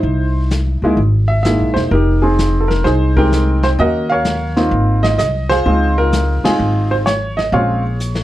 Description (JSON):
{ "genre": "jazz piano trio", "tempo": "128 BPM", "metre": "4/4", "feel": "swing 68% on 8ths", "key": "unclear", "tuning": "A4 = 444 Hz", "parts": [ { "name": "warm baby grand piano", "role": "melody", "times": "0.0-8.2 s", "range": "G#3 to G5", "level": "-16 LUFS", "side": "right 1 dB", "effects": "none" }, { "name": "upright bass", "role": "bass", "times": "0.0-8.2 s", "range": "E1 to Eb2", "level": "-16 LUFS", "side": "equal", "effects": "none" }, { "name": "vintage brush drum kit", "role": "drums", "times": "0.0-8.2 s", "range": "brushed snare drum, hi-hat, kick drum, ride cymbal, snare drum", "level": "-24 LUFS", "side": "left 2 dB", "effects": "none" } ], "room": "light reverb", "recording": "dark, warm production", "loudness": "-13 LUFS", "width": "side -14 dB against mid", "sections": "0.0-8.2 A section", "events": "band accent 6.4; drum fill 8.0", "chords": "0.0 C7alt; 1.9 Fm9; 3.8 Ebm9; 4.7 Ab; 5.7 Dbmaj7; 7.5 Bbm9", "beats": "| 0.04 0.51 0.98 1.45 | 1.92 2.38 2.85 3.32 | 3.79 4.26 4.72 5.19 | 5.66 6.13 6.59 7.06 | 7.53 8.00" }